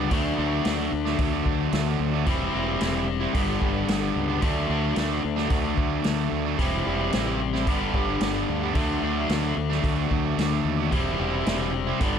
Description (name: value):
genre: classic rock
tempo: 111 BPM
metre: 4/4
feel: straight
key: unclear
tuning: A4 = 445 Hz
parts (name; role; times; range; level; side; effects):
- cranked stack guitar; riff; 0.0-12.2 s; G2 to D4; -27 LUFS; left 10 dB; overdrive
- distorted electric guitar; riff; 0.0-12.2 s; G2 to E4; -28 LUFS; right 12 dB; distortion
- growling fingered electric bass; bass; 0.0-12.2 s; E1 to D#2; -29 LUFS; equal; overdrive
- vintage drum kit; drums; 0.1-12.1 s; hi-hat, kick drum, snare drum; -28 LUFS; equal; none
room: light reverb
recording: none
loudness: -22 LUFS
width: side -8 dB against mid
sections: 0.0-12.2 A section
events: none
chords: 0.1 D; 2.3 C/E; 3.4 G; 4.4 D; 6.6 C/E; 7.7 G; 8.8 D; 10.9 C/E